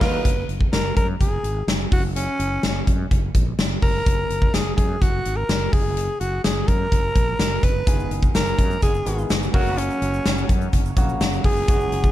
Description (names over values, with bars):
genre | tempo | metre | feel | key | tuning
1980s-style pop | 126 BPM | 4/4 | straight | F# major | A4 = 440 Hz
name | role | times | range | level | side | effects
raspy alto saxophone | melody | 0.0-12.1 s | C#4 to B4 | -25 LUFS | equal | ping-pong delay
warm grand piano | accompaniment | 0.0-0.3, 7.9-12.1 s | C#3 to A#4 | -29 LUFS | equal | none
mellow horn section | stabs | 0.0-0.1, 8.8-9.8 s | D#3 to A#4 | -34 LUFS | right 2 dB | none
fretless electric bass | bass | 0.0-12.1 s | F#1 to F#2 | -26 LUFS | equal | none
huge arena drum kit | drums | 0.0-12.1 s | crash cymbal, hi-hat, kick drum, snare drum | -20 LUFS | equal | gated reverb
egg shaker | percussion | 7.9-12.1 s | none | -46 LUFS | right 10 dB | none
room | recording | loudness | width
studio reverb | none | -18 LUFS | side -14 dB against mid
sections
0.3-12.1 A section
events
band accent 0.0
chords
0.3 F#sus2; 1.9 F#5; 4.1 F#add9; 7.9 G#m/F#; 9.5 F#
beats
| 0.25 0.73 1.21 1.68 | 2.16 2.63 3.11 3.59 | 4.06 4.54 5.02 5.49 | 5.97 6.45 6.92 7.40 | 7.87 8.35 8.83 9.30 | 9.78 10.25 10.73 11.21 | 11.68